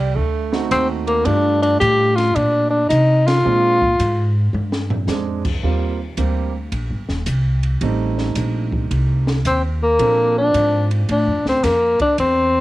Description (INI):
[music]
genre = jazz, small-group swing and bop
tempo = 110 BPM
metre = 4/4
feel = swing 67% on 8ths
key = Bb major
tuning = A4 = 440 Hz
[part]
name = breathy tenor saxophone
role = second line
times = 0.0-0.6 s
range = G3 to A3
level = -26 LUFS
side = right 8 dB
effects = none
[part]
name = upright bass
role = bass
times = 0.0-12.6 s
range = Eb1 to C3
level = -20 LUFS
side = equal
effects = none
[part]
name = open jazz drum kit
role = drums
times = 0.2-12.4 s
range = crash cymbal, hi-hat, kick drum, ride cymbal, snare drum, toms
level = -28 LUFS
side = equal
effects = cassette tape
[part]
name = clear grand piano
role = accompaniment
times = 0.5-11.5 s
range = F3 to A4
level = -25 LUFS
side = right 8 dB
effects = none
[part]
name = warm tenor saxophone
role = melody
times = 0.7-4.4, 9.5-12.6 s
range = Bb3 to G4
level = -16 LUFS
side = left 1 dB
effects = cassette tape
[sound]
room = studio reverb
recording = home recording on cassette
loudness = -15 LUFS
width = side -17 dB against mid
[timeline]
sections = 0.0-12.6 A section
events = band accent 3.2; drum fill 4.5-5.1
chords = 0.2 D7b9; 1.3 Gm7; 3.4 Bb9; 5.6 Eb69; 7.8 Am7b5; 10.0 Bbmaj9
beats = 0.17 0.71 | 1.26 1.81 2.35 2.90 | 3.45 3.99 4.54 5.09 | 5.63 6.18 6.72 7.27 | 7.82 8.36 8.91 9.45 | 10.00 10.54 11.09 11.64 | 12.18